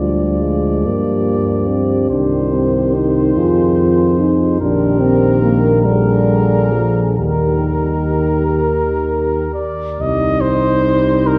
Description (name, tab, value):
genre	classical, hymn-like piece for brass band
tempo	42-49 BPM (dotted quarters)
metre	6/8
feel	rubato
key	Eb major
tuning	A4 = 439 Hz
part	warm cornet	melody	0.0-11.4 s	Bb4 to Eb5	-24 LUFS	equal	none
part	mellow French horn section	second line	0.0-11.4 s	Eb4 to Ab4	-24 LUFS	equal	none
part	clear trombone	accompaniment	0.0-11.4 s	D3 to G3	-25 LUFS	equal	none
part	mellow euphonium	accompaniment	0.0-11.4 s	Eb3 to F4	-20 LUFS	equal	none
part	mellow tuba	bass	0.0-11.4 s	Bb1 to G2	-20 LUFS	equal	none
room	wet cathedral reverb, RT60 5.0 s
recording	heard from further back in the room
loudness	-15 LUFS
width	mono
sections	0.0-10.0 A section; 10.0-11.4 B section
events	none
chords	0.0 Ddim; 0.9 Gm7; 2.1 Cm; 3.4 Fm7; 4.6 Eb/Bb; 5.8 Bb7; 7.2 Eb; 10.0 Cm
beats	0.86 | 2.11 3.38 | 4.61 5.85 | 7.18 8.58 | 9.99 11.27